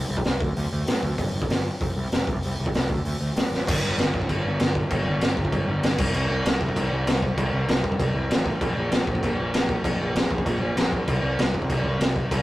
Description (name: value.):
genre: punk rock.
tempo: 194 BPM.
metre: 4/4.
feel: straight.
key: unclear.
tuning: A4 = 440 Hz.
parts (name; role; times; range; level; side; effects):
fuzz picked electric bass; bass; 0.0-12.4 s; F1 to A2; -26 LUFS; equal; overdrive.
raw garage drum kit; drums; 0.2-12.4 s; crash cymbal, hi-hat, kick drum, snare drum; -24 LUFS; equal; none.
room: little or no reverb.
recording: rough rehearsal-room recording, tube saturation.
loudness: -22 LUFS.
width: side -16 dB against mid.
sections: 0.0-3.7 A section; 3.7-12.4 B section.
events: drum fill 3.5.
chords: none.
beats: 0.25 0.56 0.87 | 1.18 1.50 1.81 2.12 | 2.43 2.74 3.05 3.36 | 3.67 3.98 4.29 4.60 | 4.91 5.22 5.53 5.83 | 6.14 6.45 6.76 7.07 | 7.38 7.69 8.00 8.30 | 8.61 8.92 9.23 9.54 | 9.84 10.15 10.46 10.77 | 11.08 11.39 11.69 12.00 | 12.31.